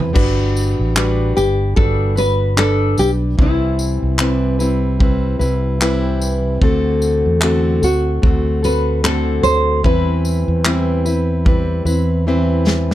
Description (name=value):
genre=acoustic pop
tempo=74 BPM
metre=4/4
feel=swing 60% on 16ths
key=G major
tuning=A4 = 440 Hz
part: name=fingerpicked plugged-in steel-string acoustic guitar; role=accompaniment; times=0.0-12.9 s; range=C3 to B4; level=-19 LUFS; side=left 1 dB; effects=none
part: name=fretless electric bass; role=bass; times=0.0-12.9 s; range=G1 to E2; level=-18 LUFS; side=equal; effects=none
part: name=natural country drum kit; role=drums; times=0.0-12.9 s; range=crash cymbal, handclaps, kick drum, snare drum, tambourine, toms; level=-18 LUFS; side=equal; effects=none
part: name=nylon-string guitar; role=melody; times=1.4-11.0 s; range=E4 to C5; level=-19 LUFS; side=equal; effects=none
room=little or no reverb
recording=dark, warm production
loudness=-14 LUFS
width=side -14 dB against mid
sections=0.2-12.9 A section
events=drum fill 0.0, 12.3-12.9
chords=0.2 Gmaj7; 3.4 Cmaj7; 6.6 D7; 9.8 Cmaj7/E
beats=| 0.15 0.96 1.77 2.58 | 3.39 4.20 5.00 5.81 | 6.62 7.42 8.23 9.04 | 9.84 10.65 11.46 12.26